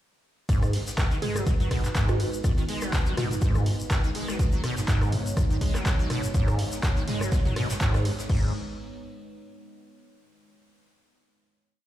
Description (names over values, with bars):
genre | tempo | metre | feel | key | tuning
acid house | 123 BPM | 4/4 | swing 56% on 16ths | G# minor | A4 = 441 Hz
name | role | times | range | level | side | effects
dark analog pad | sustained chords | 0.5-8.5 s | G#3 to C#5 | -36 LUFS | right 1 dB | chorus, phaser, sidechain pumping
liquid acid bass | riff | 0.5-8.5 s | F#2 to G#3 | -28 LUFS | equal | tube saturation, ensemble chorus, sidechain pumping, ping-pong delay
electronic kick drum | drums | 0.5-8.4 s | none | -25 LUFS | equal | none
jazz brush drum kit | drums | 0.5-8.3 s | hi-hat, snare drum | -44 LUFS | right 1 dB | none
punchy analog drum machine | drums | 0.5-8.4 s | crash cymbal, handclaps, hi-hat, ride cymbal, rim click, toms | -32 LUFS | equal | none
tube shaker | percussion | 0.5-8.3 s | none | -42 LUFS | left 4 dB | none
mallet-like synth pluck | melody | 1.2-3.6 s | F#4 to G#4 | -36 LUFS | right 1 dB | chorus, phaser, tape echo
room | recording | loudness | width
light reverb, studio ambience | played on a big sound system in a bare room, large studio reverb | -23 LUFS | side -13 dB against mid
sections
0.5-8.3 drop; 8.3-10.2 final chord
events
drop 0.5-8.3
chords
0.5 G#m